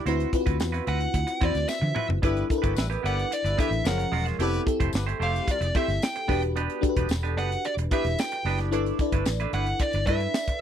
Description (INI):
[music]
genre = polished 1980s jazz-funk pop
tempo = 111 BPM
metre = 4/4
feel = straight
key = G major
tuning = A4 = 440 Hz
[part]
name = bell-like FM electric piano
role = accompaniment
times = 0.0-10.6 s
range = E#3 to D5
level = -30 LUFS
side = left 3 dB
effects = wide subtle chorus
[part]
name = semi-hollow electric guitar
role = riff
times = 0.0-10.5 s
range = G#3 to D5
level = -33 LUFS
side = right 9 dB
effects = wide subtle chorus
[part]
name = vintage muted fingered electric bass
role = bass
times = 0.1-10.3 s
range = E1 to D3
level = -28 LUFS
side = equal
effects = none
[part]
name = tight funk drum kit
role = drums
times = 0.1-10.6 s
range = hi-hat, kick drum, snare drum, toms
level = -28 LUFS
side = equal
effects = none
[part]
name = tambourine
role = percussion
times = 0.6-10.5 s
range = none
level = -42 LUFS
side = left 20 dB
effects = none
[part]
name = nasal lead guitar with a parked wah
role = melody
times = 0.9-10.6 s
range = D5 to G5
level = -29 LUFS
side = equal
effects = overdrive, slapback echo
[part]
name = warm horn section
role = second line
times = 2.2-5.7 s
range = E3 to D5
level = -34 LUFS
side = left 4 dB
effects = none
[sound]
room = little or no reverb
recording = dry, close 1970s-style studio recording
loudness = -23 LUFS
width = side -9 dB against mid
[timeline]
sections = 0.0-10.6 A section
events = drum fill 1.7-2.2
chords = 0.1 D13; 2.2 G6; 3.9 F#maj9; 4.4 Fmaj9; 6.3 Em7; 8.7 G69